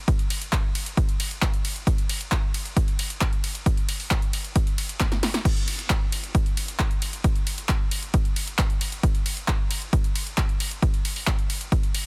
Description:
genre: trance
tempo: 134 BPM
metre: 4/4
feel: straight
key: none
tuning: none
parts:
  - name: electronic kick drum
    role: drums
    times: 0.1-11.8 s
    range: none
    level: -26 LUFS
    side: equal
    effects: none
  - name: punchy analog drum machine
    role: drums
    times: 0.1-12.0 s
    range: crash cymbal, handclaps, hi-hat, ride cymbal, snare drum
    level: -31 LUFS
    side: equal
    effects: overdrive, sidechain pumping on hats, sidechain pumping on cymbals
room: little or no reverb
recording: dense, heavily limited modern master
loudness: -25 LUFS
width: mono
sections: 0.0-12.1 A section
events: drum fill 5.0-5.5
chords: none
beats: | 0.08 0.53 0.97 1.42 | 1.87 2.32 2.77 3.21 | 3.66 4.11 4.56 5.00 | 5.45 5.90 6.35 6.80 | 7.24 7.69 8.14 8.59 | 9.04 9.48 9.93 10.38 | 10.83 11.27 11.72

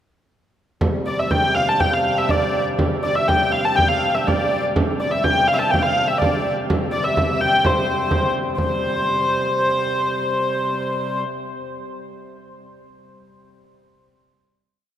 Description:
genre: medieval dance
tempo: 124 BPM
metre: 2/4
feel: straight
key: C major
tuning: A4 = 439 Hz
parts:
  - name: hand-pumped harmonium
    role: drone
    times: 0.8-11.2 s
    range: C3 to G3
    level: -27 LUFS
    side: equal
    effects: none
  - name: frame drum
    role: percussion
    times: 0.8-8.8 s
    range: none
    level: -23 LUFS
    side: right 1 dB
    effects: none
  - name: dark hurdy-gurdy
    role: melody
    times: 1.1-11.2 s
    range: C5 to A5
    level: -19 LUFS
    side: equal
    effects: none
room: wet cathedral reverb, RT60 5.2 s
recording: none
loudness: -17 LUFS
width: side -10 dB against mid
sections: 0.8-8.6 A section; 8.6-10.4 final chord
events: speeding up 0.8-10.4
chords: none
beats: | 0.82 1.31 | 1.81 2.30 | 2.80 3.29 | 3.78 4.27 | 4.76 5.24 | 5.73 6.21 | 6.69 7.17 | 7.64 8.11 | 8.58 9.05 | 9.52 9.98

